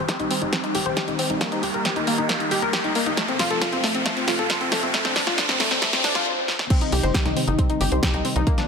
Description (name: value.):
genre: uplifting trance.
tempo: 136 BPM.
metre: 4/4.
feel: straight.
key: C dorian.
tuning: A4 = 440 Hz.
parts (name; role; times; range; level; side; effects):
analog string pad; sustained chords; 0.0-8.7 s; C3 to G4; -29 LUFS; equal; ensemble chorus, sidechain pumping.
analog pluck; arpeggios; 0.0-8.6 s; A3 to C5; -25 LUFS; left 2 dB; chorus, sidechain pumping, tape echo.
tight sequencer bass; bass; 0.0-8.4 s; D1 to F2; -28 LUFS; right 1 dB; sidechain pumping.
riser and swell; sound effects; 0.0-6.7 s; none; -26 LUFS; equal; none.
electronic kick drum; drums; 0.1-8.6 s; none; -23 LUFS; equal; high-pass filter on kick.
house drum kit; drums; 0.1-8.7 s; crash cymbal, hi-hat, snare drum; -25 LUFS; equal; sidechain pumping on hats, sidechain pumping on cymbals.
room: moderate lush hall reverb, RT60 1.6 s, digital ambience.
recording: high-pass filter.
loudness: -20 LUFS.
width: side -6 dB against mid.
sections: 0.0-6.7 A section; 6.7-8.7 B section.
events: build-up 0.0-6.7; drum fill 0.0-6.3, 6.5; riser 0.0-6.3; filter sweep on synth pluck 0.0-6.7; filter sweep 0.0-6.7; swell 5.8-6.7; stop 6.3-6.7; drop 6.7-8.7.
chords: 0.0 Cm; 1.4 Eb; 3.2 F; 4.9 Dm7; 6.7 Cm.